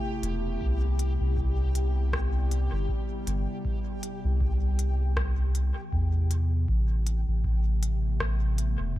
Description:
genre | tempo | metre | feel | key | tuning
ambient dub | 79 BPM | 4/4 | swing 58% on 16ths | A minor | A4 = 442 Hz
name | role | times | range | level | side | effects
warbly tape-like pad | sustained chords | 0.0-9.0 s | C3 to G4 | -36 LUFS | left 2 dB | chorus, built-in reverb
backwards swelling texture | texture | 0.0-6.7 s | G4 | -41 LUFS | left 3 dB | built-in reverb
soft dub sub bass | bass | 0.2-8.9 s | E1 to E2 | -25 LUFS | equal | none
organic electronic drum kit | drums | 0.2-8.8 s | hi-hat, rim click | -36 LUFS | left 1 dB | dub echo
electronic kick drum | drums | 0.6-9.0 s | none | -33 LUFS | equal | none
room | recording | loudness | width
little or no reverb | none | -25 LUFS | side -15 dB against mid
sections
0.0-6.7 A section; 6.7-9.0 B section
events
none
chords
0.0 Am9; 0.6 Cmaj7; 6.7 Amadd9

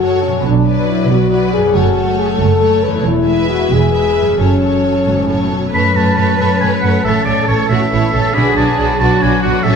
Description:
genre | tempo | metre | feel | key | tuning
cinematic, heroic adventure film score | 92 BPM (dotted quarters) | 6/8 | straight | F# minor from 5.8 s | A4 = 441 Hz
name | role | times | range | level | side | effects
warm symphonic violin section | melody | 0.0-9.8 s | B4 to E5 | -25 LUFS | left 3 dB | none
warm symphonic violin section | second line | 0.0-9.8 s | F#4 to B4 | -24 LUFS | left 2 dB | none
warm symphonic viola section | accompaniment | 0.0-9.8 s | F#3 to D4 | -21 LUFS | equal | none
warm French horn section | sustained chords | 0.0-5.5 s | C#4 to B4 | -15 LUFS | left 3 dB | none
concert harp | arpeggios | 0.0-9.8 s | E2 to B4 | -21 LUFS | left 8 dB | none
warm symphonic cello section | bass | 0.0-9.8 s | E2 to B4 | -20 LUFS | right 3 dB | none
warm symphonic double bass section | bass | 0.0-9.7 s | E1 to F#2 | -18 LUFS | right 5 dB | none
clear oboe | second line | 5.7-9.8 s | C#5 to B5 | -17 LUFS | right 2 dB | none
dark trombone section | sustained chords | 5.8-9.8 s | D3 to C#4 | -23 LUFS | equal | none
room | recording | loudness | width
moderate scoring stage reverb, RT60 1.5 s | none | -11 LUFS | side -6 dB against mid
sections
0.0-5.8 A section; 5.8-9.8 B section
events
none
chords
0.4 Bm; 1.7 F#m; 3.0 E; 4.4 F#m; 7.1 A; 8.4 Bm

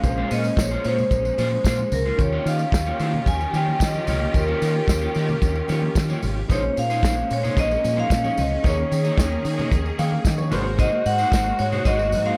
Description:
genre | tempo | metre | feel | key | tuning
disco | 112 BPM | 4/4 | straight | Bb dorian | A4 = 439 Hz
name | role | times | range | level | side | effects
vibraphone with medium hard mallets | melody | 0.0-12.4 s | Bb4 to Ab5 | -27 LUFS | equal | analog delay
electric guitar at the edge of break-up | accompaniment | 0.0-12.4 s | Ab3 to Eb5 | -34 LUFS | equal | subtle chorus
warm concert grand piano | accompaniment | 0.0-12.4 s | Bb2 to G5 | -35 LUFS | equal | none
clear studio string section | sustained chords | 0.0-12.4 s | Eb3 to Ab4 | -33 LUFS | equal | none
deep dub fingered electric bass | bass | 0.0-12.3 s | Ab1 to Eb3 | -27 LUFS | equal | none
warm soul drum kit | drums | 0.0-12.3 s | hi-hat, kick drum, snare drum | -26 LUFS | equal | none
congas | percussion | 0.0-12.4 s | none | -36 LUFS | equal | none
tambourine | percussion | 0.0-12.2 s | none | -42 LUFS | equal | none
room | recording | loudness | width
little or no reverb | none | -22 LUFS | mono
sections
0.0-6.5 A section; 6.5-12.4 B section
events
grand piano fill 9.7-10.8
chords
0.0 Bbm9; 2.2 Eb9; 6.5 Bbm11; 8.6 Eb7sus4; 10.5 Ab9

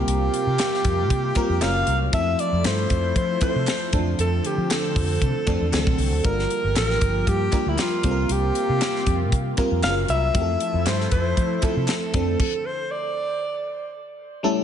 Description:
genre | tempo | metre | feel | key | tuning
polished 1980s jazz-funk pop | 117 BPM | 4/4 | swing 54% on 16ths | D minor | A4 = 441 Hz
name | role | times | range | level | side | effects
breathy alto saxophone | melody | 0.0-13.9 s | E4 to E#5 | -25 LUFS | equal | diffuse ambient delay
FM electric piano | accompaniment | 0.0-14.6 s | E3 to Bb4 | -27 LUFS | left 1 dB | lush chorus
lush unison pad | sustained chords | 0.0-14.6 s | C3 to G4 | -30 LUFS | equal | chorus
vintage muted fingered electric bass | bass | 0.0-12.3 s | F#1 to F3 | -24 LUFS | equal | none
tight funk drum kit | drums | 0.1-12.5 s | crash cymbal, hi-hat, kick drum, snare drum | -25 LUFS | equal | none
group handclap | percussion | 0.6-12.0 s | none | -38 LUFS | right 5 dB | none
room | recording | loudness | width
moderate plate reverb, RT60 1.8 s, studio reverb | dreamy mix soaked in reverb, nothing above 10.4 kHz | -20 LUFS | side -9 dB against mid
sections
0.0-14.4 A section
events
stop 12.4-14.4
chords
0.0 C7sus4; 1.6 F#maj7; 2.1 Fmaj7; 3.9 Dm7/F; 5.7 D7; 6.2 Gm7; 8.0 C7sus4; 9.8 F#maj7; 10.3 Fmaj7; 12.1 Dm7/F; 13.9 N.C.

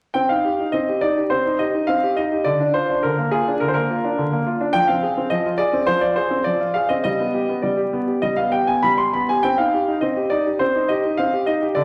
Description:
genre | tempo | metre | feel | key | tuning
classical-period piano sonatina | 104 BPM | 4/4 | rubato | C minor | A4 = 440 Hz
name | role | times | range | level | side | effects
clear concert grand piano | solo | 0.1-11.8 s | D3 to C6 | -20 LUFS | equal | none
room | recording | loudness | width
wet recital hall reverb, RT60 1.6 s | vinyl crackle | -20 LUFS | mono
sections
0.2-11.8 A section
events
none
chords
0.2 Cm; 2.5 Bb/D; 4.7 Fm13; 7.0 G; 9.4 Cm

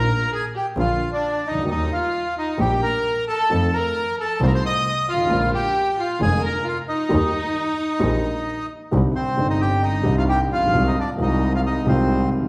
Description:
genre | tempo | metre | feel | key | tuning
tango | 133 BPM | 4/4 | rubato | Eb major, C minor from 8.9 s | A4 = 440 Hz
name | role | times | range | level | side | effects
bandoneon | melody | 0.0-12.3 s | C4 to Eb6 | -25 LUFS | equal | none
rich violin | second line | 0.0-8.7 s | D4 to Eb5 | -30 LUFS | equal | none
dark grand piano | accompaniment | 0.0-12.5 s | F1 to G4 | -25 LUFS | equal | none
clear double bass | bass | 0.0-12.5 s | F1 to F2 | -27 LUFS | equal | none
room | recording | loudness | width
wet recital hall reverb, RT60 1.3 s | recorded in a church or concert hall | -21 LUFS | mono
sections
0.0-8.9 A section; 8.9-12.5 B section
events
none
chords
0.0 N.C.; 0.8 Bb; 1.7 Eb; 3.5 F7; 5.3 Bb7; 7.1 Eb; 8.9 Cmadd9; 10.7 Ab6/C

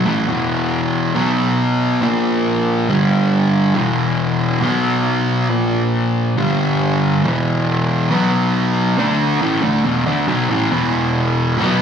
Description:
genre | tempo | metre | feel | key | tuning
metal | 69 BPM | 4/4 | straight | E minor | A4 = 438 Hz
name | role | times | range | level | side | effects
fuzz guitar | solo | 0.0-11.8 s | E2 to D4 | -14 LUFS | equal | distortion, slapback echo
room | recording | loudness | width
little or no reverb | live gig heard through the venue's PA, club reverb | -15 LUFS | side -7 dB against mid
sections
0.3-11.8 A section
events
none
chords
0.3 E5; 1.2 B5; 2.0 A#5; 2.9 G5; 3.8 E5; 4.6 B5; 5.5 A#5; 6.4 G5; 7.2 E5; 8.1 B5; 9.0 E5

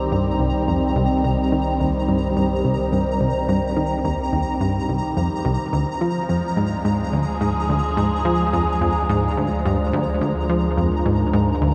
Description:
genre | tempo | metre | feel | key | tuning
ambient, sequencer-driven space music | 107 BPM | 4/4 | straight | C minor | A4 = 440 Hz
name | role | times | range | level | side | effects
phased analog pad | sustained chords | 0.0-11.7 s | Eb3 to Bb4 | -25 LUFS | equal | phaser, chorus
warm sub bass | bass | 0.0-11.7 s | C2 to D2 | -29 LUFS | equal | none
pulsing gated texture | texture | 0.0-11.7 s | Bb5 | -33 LUFS | equal | chorus, built-in reverb
plucky analog bass | riff | 0.1-11.7 s | C2 to F3 | -24 LUFS | equal | tape echo
room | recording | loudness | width
wet echo chamber reverb, RT60 2.2 s | echo-heavy mix, cassette tape, nothing above 10.3 kHz | -21 LUFS | mono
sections
0.0-11.7 A section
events
none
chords
0.0 Cm; 5.7 Ddim

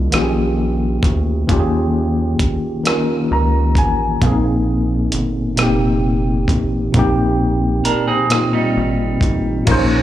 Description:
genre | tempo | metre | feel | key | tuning
slow six-eight R&B | 44 BPM (dotted quarters) | 6/8 | straight | unclear | A4 = 444 Hz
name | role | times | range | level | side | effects
tine electric piano | accompaniment | 0.0-10.0 s | Bb2 to Bb5 | -17 LUFS | equal | overdrive, medium stereo tremolo
rubbery square bass | bass | 0.0-10.0 s | F1 to Eb2 | -20 LUFS | equal | none
dusty soul sampler-style drum kit | drums | 0.1-9.9 s | crash cymbal, hi-hat, kick drum, rim click | -19 LUFS | equal | overdrive
semi-hollow electric guitar | second line | 7.9-9.6 s | G3 to Bb4 | -19 LUFS | right 4 dB | slapback echo
tonewheel organ | sustained chords | 9.7-10.0 s | Ab3 to Db4 | -24 LUFS | right 4 dB | chorus vibrato, slow rotary speaker
room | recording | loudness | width
light reverb, digital ambience | live gig heard through the venue's PA, club reverb | -14 LUFS | side -13 dB against mid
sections
0.0-9.7 A section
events
tine electric piano fill 2.9-4.2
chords
0.0 Eb9sus4; 4.2 Bb9sus4

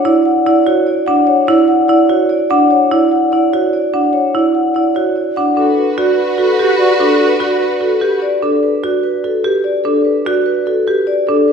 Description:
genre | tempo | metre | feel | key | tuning
classical, minimalist pattern music | 294 BPM (eighths) | 7/8 | straight | D major, G major from 5.6 s | A4 = 438 Hz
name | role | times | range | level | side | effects
vibraphone with soft mallets | melody | 0.0-11.5 s | A4 to F#5 | -14 LUFS | left 4 dB | none
marimba with medium hard mallets | arpeggios | 0.1-11.5 s | D4 to G4 | -14 LUFS | right 4 dB | none
alto flute | second line | 5.6-8.2 s | F#4 | -19 LUFS | right 4 dB | none
clear studio string section | sustained chords | 5.6-8.2 s | F#4 to B4 | -19 LUFS | left 1 dB | none
room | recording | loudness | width
wet recital hall reverb, RT60 1.4 s | heard from further back in the room, nothing above 10.5 kHz | -11 LUFS | side -6 dB against mid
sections
0.0-5.6 A section; 5.6-11.5 B section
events
none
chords
0.0 Dmaj7; 5.6 Gmaj9

